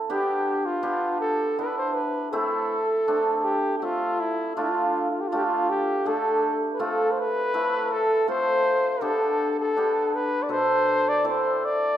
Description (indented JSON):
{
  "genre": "klezmer",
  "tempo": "81 BPM",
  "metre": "3/4",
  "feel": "straight",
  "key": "unclear",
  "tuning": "A4 = 441 Hz",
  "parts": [
    { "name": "breathy cornet", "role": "melody", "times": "0.1-12.0 s", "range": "E4 to D5", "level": "-24 LUFS", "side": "left 1 dB", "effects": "none" },
    { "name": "hammered dulcimer", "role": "accompaniment", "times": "0.1-11.6 s", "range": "B2 to E5", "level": "-26 LUFS", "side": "right 2 dB", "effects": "none" }
  ],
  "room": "wet recital hall reverb, RT60 1.6 s",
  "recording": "minimal, uncompressed stereo recording",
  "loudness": "-22 LUFS",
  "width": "side -11 dB against mid",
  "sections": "0.1-12.0 A section",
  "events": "none",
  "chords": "0.1 G; 2.3 Am; 4.6 Dm; 6.8 F; 9.0 G; 11.2 Am"
}